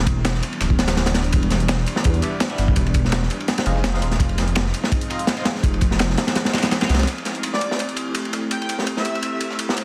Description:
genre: drum and bass, jungle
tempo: 167 BPM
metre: 4/4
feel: swing 54% on 16ths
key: unclear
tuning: A4 = 439 Hz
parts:
  - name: soft string machine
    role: sustained chords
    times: 0.0-9.8 s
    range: E3 to G4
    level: -32 LUFS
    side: equal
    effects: ensemble chorus
  - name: dark detuned saw bass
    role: bass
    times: 0.0-7.1 s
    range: D1 to E2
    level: -24 LUFS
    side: equal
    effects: none
  - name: crunchy breakbeat drum kit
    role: drums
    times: 0.1-9.8 s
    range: kick drum, ride cymbal, snare drum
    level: -24 LUFS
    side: equal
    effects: high-pass filter on kick, high-pass filter on cymbals, high-pass filter on snare, high-pass filter on room
  - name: dusty soul sampler-style drum kit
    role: drums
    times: 0.1-9.8 s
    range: hi-hat, snare drum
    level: -34 LUFS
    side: equal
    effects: high-pass filter on hats, high-pass filter on snare
  - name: band-passed chord stab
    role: stabs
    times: 2.2-6.9 s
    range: G3 to F4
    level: -34 LUFS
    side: equal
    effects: phaser, lush chorus, dub echo
  - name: airy dreamy lead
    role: melody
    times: 7.5-9.5 s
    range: D5 to G5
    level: -30 LUFS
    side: equal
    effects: chorus, vintage 12-bit sampler grit, dub echo
room: light reverb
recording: dense, heavily limited modern master, vinyl crackle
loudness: -21 LUFS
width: mono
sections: 0.0-7.1 A section; 7.1-9.8 B section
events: filter sweep on synth stab 0.0-7.1; filter sweep on string machine 7.1-9.8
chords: 0.0 Em7; 3.5 Fm7; 7.1 Am7

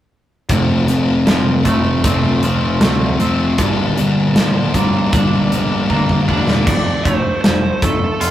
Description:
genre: quiet-loud alternative rock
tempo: 78 BPM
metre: 4/4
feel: straight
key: unclear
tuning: A4 = 440 Hz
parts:
  - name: twangy electric guitar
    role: arpeggios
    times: 0.5-8.3 s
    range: F2 to F4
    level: -24 LUFS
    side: right 2 dB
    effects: digital delay
  - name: sludgy distorted guitar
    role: riff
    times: 0.5-6.6 s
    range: F2 to D4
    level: -16 LUFS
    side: left 1 dB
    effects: overdrive
  - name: fuzz picked electric bass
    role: bass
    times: 0.5-8.3 s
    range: E1 to F2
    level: -21 LUFS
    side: right 1 dB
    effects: overdrive
  - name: big rock drum kit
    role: drums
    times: 0.5-8.3 s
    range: crash cymbal, hi-hat, kick drum, snare drum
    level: -18 LUFS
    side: equal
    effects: none
  - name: high-gain lead guitar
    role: melody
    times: 6.7-8.3 s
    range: A4 to D5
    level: -21 LUFS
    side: right 2 dB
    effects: distortion
room: moderate studio reverb, RT60 0.6 s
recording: rough rehearsal-room recording, warm saturation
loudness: -13 LUFS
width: side -12 dB against mid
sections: 0.5-6.7 A section; 6.7-8.3 B section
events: drum fill 5.9-6.7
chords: 0.5 F; 3.6 Gm7; 6.7 F

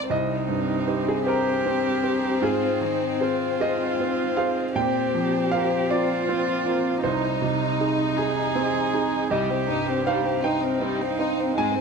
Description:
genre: neoclassical piano and strings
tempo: 52 BPM (dotted quarters)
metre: 6/8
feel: rubato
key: C minor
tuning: A4 = 439 Hz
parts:
  - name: warm chamber violin section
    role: melody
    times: 0.0-11.8 s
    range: G3 to Eb4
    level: -26 LUFS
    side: left 6 dB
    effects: none
  - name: clear baby grand piano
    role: accompaniment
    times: 0.0-11.8 s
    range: C2 to Ab5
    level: -25 LUFS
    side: right 4 dB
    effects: none
  - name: dark cello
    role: second line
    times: 0.1-11.8 s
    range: C4 to Ab4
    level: -29 LUFS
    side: right 4 dB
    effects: none
room: moderate recital hall reverb, RT60 1.3 s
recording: close, detailed microphones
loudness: -21 LUFS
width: side -5 dB against mid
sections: 0.1-11.8 A section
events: none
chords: 0.1 Cm; 2.4 Ab; 4.8 Bbsus2; 7.0 Ab/C; 9.3 Cm

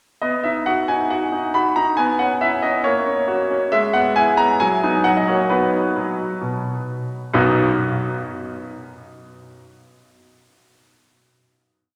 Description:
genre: classical-period piano sonatina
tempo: 135 BPM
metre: 4/4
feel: straight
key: B major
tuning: A4 = 442 Hz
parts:
  - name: clear grand piano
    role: solo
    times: 0.2-7.7 s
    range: B1 to B5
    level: -20 LUFS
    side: equal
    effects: none
room: wet church reverb, RT60 3.2 s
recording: none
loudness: -19 LUFS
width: mono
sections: 0.2-7.3 A section; 7.3-9.1 final chord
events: none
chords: 0.2 B; 2.0 C#m7/B; 2.9 F#/A#; 3.7 E/G#; 4.6 B/F#; 5.0 F#; 5.5 B

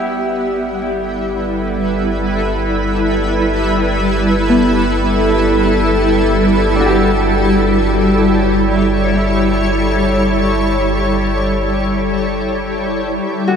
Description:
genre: ambient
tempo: free time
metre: none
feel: none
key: G lydian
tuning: A4 = 437 Hz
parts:
  - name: shimmering ambient pad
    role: sustained chords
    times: 0.0-13.6 s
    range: D3 to F#5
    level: -15 LUFS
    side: equal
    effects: chorus, built-in reverb
  - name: Celtic harp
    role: arpeggios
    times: 0.0-13.6 s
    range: B3 to G4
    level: -21 LUFS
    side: left 1 dB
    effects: ping-pong delay
  - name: warm sub bass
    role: bass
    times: 0.0-13.2 s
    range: G1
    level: -21 LUFS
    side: equal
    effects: none
  - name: bowed-like drone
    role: drone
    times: 0.0-13.6 s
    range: G3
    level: -23 LUFS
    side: left 2 dB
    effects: built-in reverb, phaser
room: wet huge ambient reverb, RT60 7.8 s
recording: none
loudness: -13 LUFS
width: side -7 dB against mid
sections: 0.0-13.2 A section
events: fade-in on synth drone 0.0-13.2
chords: 0.0 G69

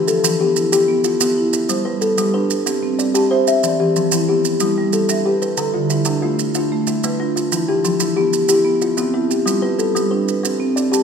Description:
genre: southern african traditional, mbira-style interlocking cycle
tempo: 124 BPM (dotted quarters)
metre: 12/8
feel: straight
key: G mixolydian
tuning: A4 = 441 Hz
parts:
  - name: kalimba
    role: arpeggios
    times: 0.0-11.0 s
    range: D3 to E5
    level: -18 LUFS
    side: left 4 dB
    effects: none
  - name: marimba with soft mallets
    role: arpeggios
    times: 0.0-11.0 s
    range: D3 to A5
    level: -20 LUFS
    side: right 4 dB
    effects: none
  - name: maracas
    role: percussion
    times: 0.1-11.0 s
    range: none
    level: -24 LUFS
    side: right 8 dB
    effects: none
room: moderate concert hall reverb, RT60 2.3 s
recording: minimal, uncompressed stereo recording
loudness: -15 LUFS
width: side -6 dB against mid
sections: 0.0-1.7 A section; 1.7-11.0 B section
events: none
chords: 0.0 Em; 1.7 G; 2.7 C; 3.6 Em; 4.6 G; 5.6 Dm; 7.5 Em; 9.5 G; 10.4 C5

